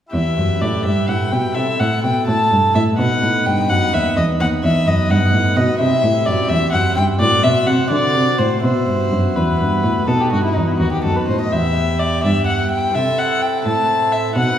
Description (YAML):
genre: classical, baroque-style sonata movement with continuo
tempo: 84 BPM (dotted quarters)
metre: 12/8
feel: straight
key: E minor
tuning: A4 = 440 Hz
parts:
  - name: warm violin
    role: melody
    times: 0.1-14.6 s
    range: D#4 to A5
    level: -18 LUFS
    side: left 2 dB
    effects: none
  - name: pipe organ, principal chorus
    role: accompaniment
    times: 0.1-14.6 s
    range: D#2 to B4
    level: -20 LUFS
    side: right 1 dB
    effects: none
  - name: rich cello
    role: bass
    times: 0.1-14.6 s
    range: D#2 to D3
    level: -19 LUFS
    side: right 1 dB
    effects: none
room: wet recital hall reverb, RT60 1.6 s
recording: heard from further back in the room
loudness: -14 LUFS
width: side -10 dB against mid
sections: 0.1-14.6 A section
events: none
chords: 0.1 Em; 1.6 Am; 3.0 B; 5.8 C; 7.2 F#dim/A; 8.6 Bsus4; 10.1 B; 11.5 Em; 12.9 Am/C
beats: | 0.13 0.85 1.56 2.27 | 2.98 3.69 4.40 5.11 | 5.80 6.50 7.20 7.91 | 8.63 9.35 10.07 10.80 | 11.52 12.24 12.95 13.65 | 14.36